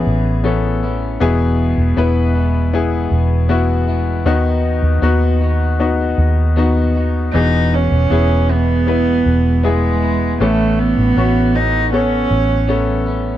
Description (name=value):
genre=pop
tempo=79 BPM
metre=4/4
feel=straight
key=E major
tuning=A4 = 439 Hz
part: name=warm cello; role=melody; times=0.0-0.8, 7.3-13.0 s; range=E3 to D#4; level=-18 LUFS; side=right 4 dB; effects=none
part: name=bright upright piano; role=accompaniment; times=0.0-13.4 s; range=A2 to B4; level=-19 LUFS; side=left 5 dB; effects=none
part: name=electric guitar at the edge of break-up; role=arpeggios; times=0.0-13.4 s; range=E2 to F#4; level=-24 LUFS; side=right 3 dB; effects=none
part: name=vintage muted fingered electric bass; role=bass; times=0.0-13.4 s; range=E1 to D#2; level=-16 LUFS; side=equal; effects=none
room=light reverb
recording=dry, close 1970s-style studio recording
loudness=-13 LUFS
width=side -12 dB against mid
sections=0.0-13.4 A section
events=none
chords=0.0 Aadd9; 1.2 E; 4.3 B/D#; 7.3 E; 10.4 Aadd9